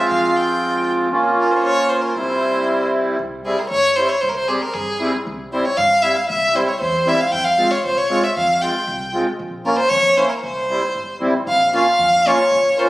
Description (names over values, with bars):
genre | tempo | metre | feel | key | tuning
klezmer | 116 BPM | 2/4 | straight | C phrygian dominant | A4 = 440 Hz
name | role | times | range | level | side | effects
rich violin | melody | 0.0-12.9 s | Ab4 to G5 | -17 LUFS | equal | none
accordion | accompaniment | 0.0-12.9 s | G3 to G4 | -20 LUFS | right 1 dB | light tremolo tuning
upright bass | bass | 0.0-12.8 s | G1 to G2 | -34 LUFS | equal | none
room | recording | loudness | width
wet recital hall reverb, RT60 1.6 s | recorded on a phone in the room, club reverb | -15 LUFS | side -17 dB against mid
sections
0.0-3.2 A section; 3.2-11.5 A section; 11.5-12.9 B section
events
none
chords
0.0 Fm; 1.1 Bbm; 2.2 C; 7.3 Fm; 9.4 Bbm; 10.4 C; 11.5 Bbm